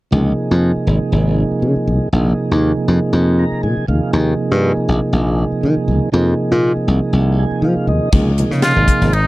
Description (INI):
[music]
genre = electric jazz fusion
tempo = 120 BPM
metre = 4/4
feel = swing 54% on 16ths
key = unclear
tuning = A4 = 440 Hz
[part]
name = mellow tonewheel organ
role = accompaniment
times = 0.1-9.1 s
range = C3 to Bb5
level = -18 LUFS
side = right 2 dB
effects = slow rotary speaker
[part]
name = glassy slap bass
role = bass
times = 0.1-9.3 s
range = Ab1 to F3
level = -14 LUFS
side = left 1 dB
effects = none
[part]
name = crisp fusion drum kit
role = drums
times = 8.1-9.3 s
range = crash cymbal, hi-hat, kick drum, ride cymbal, snare drum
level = -18 LUFS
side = left 1 dB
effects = none
[part]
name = trumpet with metal mute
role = melody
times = 8.6-9.3 s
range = Eb4 to F4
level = -15 LUFS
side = equal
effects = none
[sound]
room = little or no reverb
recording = dry, close 1970s-style studio recording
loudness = -13 LUFS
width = side -19 dB against mid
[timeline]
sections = 0.1-8.1 A section; 8.1-9.3 B section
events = tonewheel organ fill 3.1-4.1, 7.1-8.1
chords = 0.1 Dbmaj9; 2.1 Bbsus2; 3.9 Ebsus4; 6.1 Fm7; 8.1 Dbmaj9